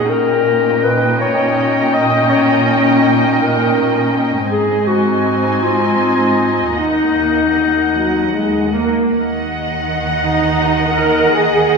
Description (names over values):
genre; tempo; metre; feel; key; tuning
cinematic, emotional film score for orchestra; 54 BPM (dotted quarters); 6/8; rubato; Eb minor; A4 = 441 Hz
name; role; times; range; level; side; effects
mellow clarinet; second line; 0.0-8.7 s; Eb4 to Eb5; -16 LUFS; left 2 dB; none
muted studio violin section; second line; 0.0-11.8 s; Eb5 to Ab5; -19 LUFS; equal; none
muted studio viola section; accompaniment; 0.0-11.8 s; Gb3 to Bb4; -17 LUFS; equal; none
muted studio cello section; bass; 0.0-11.8 s; Eb2 to Eb3; -21 LUFS; right 2 dB; none
muted studio violin section; melody; 9.1-11.8 s; Eb5 to Gb5; -24 LUFS; left 3 dB; none
muted studio double bass section; bass; 9.1-11.8 s; Eb2; -23 LUFS; right 5 dB; none
room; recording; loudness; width
wet scoring stage reverb, RT60 1.8 s; recorded in a church or concert hall, lossy compression artefacts; -12 LUFS; side -4 dB against mid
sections
0.0-9.1 A section; 9.1-11.8 A section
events
none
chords
0.1 Eb7/Bb; 4.5 Ab; 6.8 Ebm